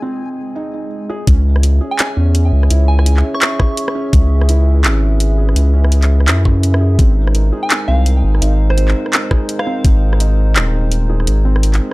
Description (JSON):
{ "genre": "half-time drum and bass", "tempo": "168 BPM", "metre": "4/4", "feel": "swing 59% on 16ths, half-time", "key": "unclear", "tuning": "A4 = 439 Hz", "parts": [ { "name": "dark analog pad", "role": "sustained chords", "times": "0.0-11.9 s", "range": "G#3 to E5", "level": "-24 LUFS", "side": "equal", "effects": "chorus, sidechain pumping" }, { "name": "felt-muted upright piano", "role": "arpeggios", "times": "0.0-11.9 s", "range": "C#3 to G#4", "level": "-24 LUFS", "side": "right 2 dB", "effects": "tape echo" }, { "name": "backwards swelling texture", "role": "texture", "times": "0.0-0.6 s", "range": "G#3 to G#4", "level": "-32 LUFS", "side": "right 1 dB", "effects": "built-in reverb" }, { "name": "saturated sub bass", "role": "bass", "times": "1.3-11.8 s", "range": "D#1 to F#2", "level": "-12 LUFS", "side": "equal", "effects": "tube saturation" }, { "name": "drum and bass drum kit", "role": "drums", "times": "1.3-11.9 s", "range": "handclaps, hi-hat, rim click", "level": "-18 LUFS", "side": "equal", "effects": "small room reverb" }, { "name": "electronic kick drum", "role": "drums", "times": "1.3-1.4, 3.6-4.2, 6.5-7.1, 9.3-9.9 s", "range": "none", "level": "-11 LUFS", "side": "equal", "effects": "small room reverb" }, { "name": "soft synth bell", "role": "melody", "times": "1.9-3.8, 7.6-9.8 s", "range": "B#4 to C#6", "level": "-24 LUFS", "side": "right 2 dB", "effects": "chorus, tape echo" } ], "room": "digital ambience", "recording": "dry, gritty hardware recording, transformer saturation", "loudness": "-11 LUFS", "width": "side -21 dB against mid", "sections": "0.0-1.3 A section; 1.3-11.9 B section", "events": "drop 1.3-11.9", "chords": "0.0 G#add9; 1.3 C#m; 7.0 G#add9" }